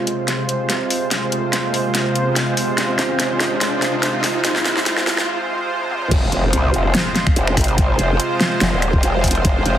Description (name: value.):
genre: heavy wobble dubstep.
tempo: 144 BPM.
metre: 4/4.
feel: swing 54% on 16ths, half-time.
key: F minor.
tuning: A4 = 439 Hz.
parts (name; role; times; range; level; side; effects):
supersaw pad; sustained chords; 0.0-9.8 s; C3 to C5; -20 LUFS; right 1 dB; sidechain pumping, low-pass filter.
riser and impact; sound effects; 0.5-7.8 s; none; -27 LUFS; equal; none.
dubstep drum kit; drums; 0.1-9.7 s; crash cymbal, finger snaps, hi-hat, snare drum, toms; -21 LUFS; left 1 dB; overdrive, high-pass filter on hats, high-pass filter on toms, high-pass filter on snare, high-pass filter on cymbals.
growl bass; bass; 6.1-9.8 s; Eb1 to C2; -18 LUFS; equal; chorus, overdrive.
electronic kick drum; drums; 6.1-9.5 s; none; -18 LUFS; equal; overdrive.
room: moderate digital room reverb, RT60 1.1 s.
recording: heavily compressed radio sound, multiband compression, high-pass filter.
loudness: -16 LUFS.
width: side -10 dB against mid.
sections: 0.0-6.1 A section; 6.1-9.8 B section.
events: build-up 0.0-6.1; drum fill 0.0-5.3, 5.8-6.1; filter sweep on supersaw synth 0.0-6.1; riser 0.5-5.3; break 5.3-6.1; drop 6.1-9.8; impact 6.1-7.8.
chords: 0.0 Fm.